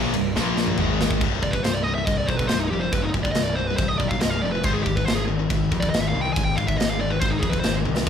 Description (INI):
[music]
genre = heavy metal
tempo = 140 BPM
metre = 4/4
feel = straight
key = C minor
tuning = A4 = 440 Hz
[part]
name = crunchy overdriven guitar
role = riff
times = 0.0-1.2 s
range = C2 to Bb3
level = -30 LUFS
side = left 2 dB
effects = none
[part]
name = high-gain distorted guitar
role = riff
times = 0.0-8.1 s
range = C2 to Bb3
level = -28 LUFS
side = left 10 dB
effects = distortion
[part]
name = sludgy distorted guitar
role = riff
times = 0.0-1.2 s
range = C2 to Bb3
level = -28 LUFS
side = right 7 dB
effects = overdrive
[part]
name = fuzz picked electric bass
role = bass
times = 0.0-8.1 s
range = C1 to F2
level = -26 LUFS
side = right 1 dB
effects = overdrive
[part]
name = tight metal drum kit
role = drums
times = 0.1-8.1 s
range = crash cymbal, kick drum, ride cymbal, snare drum, toms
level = -25 LUFS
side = equal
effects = none
[part]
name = high-gain lead guitar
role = melody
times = 1.4-7.7 s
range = Eb4 to Ab5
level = -26 LUFS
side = right 1 dB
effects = distortion
[sound]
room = light reverb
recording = band playing live in one room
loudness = -20 LUFS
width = side -8 dB against mid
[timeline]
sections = 0.0-1.2 A section; 1.2-8.1 B section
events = half time 0.0-1.2; drum fill 0.4-1.2, 7.9; lead electric guitar solo 1.2-8.1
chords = 0.4 Bb5; 0.8 Ab5; 1.2 C5; 4.6 Ab5